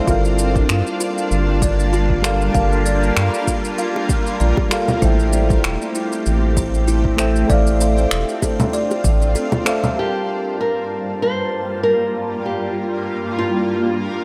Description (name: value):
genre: sunset chillout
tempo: 97 BPM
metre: 4/4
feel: swing 56% on 16ths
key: G dorian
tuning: A4 = 440 Hz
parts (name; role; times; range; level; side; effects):
- mellow FM electric piano; accompaniment; 0.0-14.2 s; G3 to A5; -27 LUFS; equal; chorus, delay, shimmer reverb
- shimmering ambient pad; sustained chords; 0.0-14.2 s; G2 to A5; -26 LUFS; equal; chorus, built-in reverb, phaser, shimmer reverb
- buzzing kalimba; arpeggios; 0.0-9.8 s; E4 to F5; -27 LUFS; equal; delay, shimmer reverb
- round analog bass; bass; 0.1-9.4 s; E1 to G2; -20 LUFS; equal; none
- electronic kick drum; drums; 0.1-9.2 s; none; -22 LUFS; equal; overdrive
- electronic shaker, finger snaps and congas; drums; 0.1-9.9 s; none; -26 LUFS; equal; overdrive
- bongos; percussion; 4.0-4.7, 8.4-9.6 s; none; -29 LUFS; equal; none
- nylon-string guitar; melody; 10.0-14.2 s; F4 to C5; -24 LUFS; equal; tape echo, shimmer reverb
room: moderate lush hall reverb, RT60 2.2 s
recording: none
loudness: -18 LUFS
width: mono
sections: 0.0-10.0 A section; 10.0-14.2 B section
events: none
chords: 0.1 Gm7; 5.0 Am7; 7.5 Dm9; 10.0 Gm7